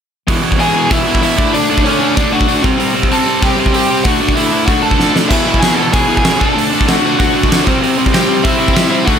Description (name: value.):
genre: punk rock.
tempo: 191 BPM.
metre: 4/4.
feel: straight.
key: unclear.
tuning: A4 = 440 Hz.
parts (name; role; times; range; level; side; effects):
biting overdriven guitar; riff; 0.3-9.2 s; E2 to D4; -17 LUFS; right 10 dB; none.
crunchy overdriven guitar; riff; 0.3-9.2 s; E2 to D4; -17 LUFS; left 10 dB; none.
big rock drum kit; drums; 0.3-9.1 s; hi-hat, kick drum, snare drum, splash cymbal; -15 LUFS; equal; none.
lead guitar through a small cranked amp; melody; 0.6-9.2 s; C#4 to A5; -16 LUFS; equal; overdrive, ping-pong delay.
room: light reverb.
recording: none.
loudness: -10 LUFS.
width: side -8 dB against mid.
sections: 0.3-9.2 A section.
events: drum fill 5.0-5.3.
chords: 0.3 E; 1.4 D; 2.6 C5; 4.1 D; 5.3 E; 6.4 D; 7.7 C.